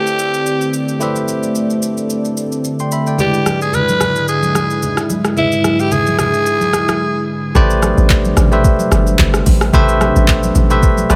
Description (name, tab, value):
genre	amapiano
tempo	110 BPM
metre	4/4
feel	swing 55% on 16ths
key	A minor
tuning	A4 = 439 Hz
part	growling alto saxophone	melody	0.0-7.2 s	E4 to B4	-20 LUFS	equal	delay
part	barky tine electric piano	accompaniment	0.0-11.2 s	G#3 to C6	-21 LUFS	equal	none
part	warm analog pad	sustained chords	0.0-11.2 s	G#2 to D5	-23 LUFS	equal	chorus, sidechain pumping
part	smooth R&B drum kit	drums	0.1-11.2 s	handclaps, hi-hat, kick drum, rim click, shaker	-19 LUFS	equal	none
part	congas	percussion	3.2-11.2 s	none	-25 LUFS	equal	none
part	hollow log drum bass	bass	7.6-11.2 s	G1 to A1	-16 LUFS	equal	none
room	light reverb, digital ambience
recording	none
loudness	-14 LUFS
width	mono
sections	0.0-7.6 A section; 7.6-11.2 B section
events	break 7.0-7.6; drop 7.6-11.2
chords	0.0 Am11; 3.2 E7/G#; 7.6 Am11